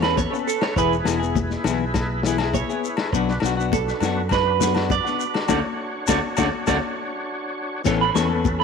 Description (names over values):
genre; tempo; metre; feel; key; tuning
highlife guitar band; 102 BPM; 4/4; straight; A major; A4 = 441 Hz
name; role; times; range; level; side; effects
semi-hollow electric guitar; accompaniment; 0.0-8.6 s; E3 to A4; -26 LUFS; left 10 dB; none
overdriven tonewheel organ; sustained chords; 0.0-8.6 s; C#4 to C#5; -29 LUFS; equal; slow rotary speaker, chorus vibrato
electric guitar through a small old amp; arpeggios; 0.0-8.6 s; A4 to C#6; -24 LUFS; right 14 dB; tape echo
fingered electric bass; bass; 0.0-8.6 s; E1 to F#2; -26 LUFS; right 1 dB; none
vintage drum kit; drums; 0.0-8.6 s; crash cymbal, kick drum, snare drum; -27 LUFS; left 3 dB; none
agogo bells; percussion; 0.0-8.3 s; none; -33 LUFS; left 12 dB; none
congas; percussion; 0.2-8.6 s; none; -29 LUFS; left 10 dB; none
shekere; percussion; 0.2-8.6 s; none; -32 LUFS; left 6 dB; none
room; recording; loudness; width
light reverb, studio ambience; 1960s-style stereo with parts hard left and right; -20 LUFS; side -6 dB against mid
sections
0.0-7.9 A section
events
clean electric guitar solo 0.0-7.9; band accent 5.5-7.9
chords
0.0 Aadd9; 0.8 E; 3.1 Bm; 5.5 Dmaj7; 7.9 Aadd9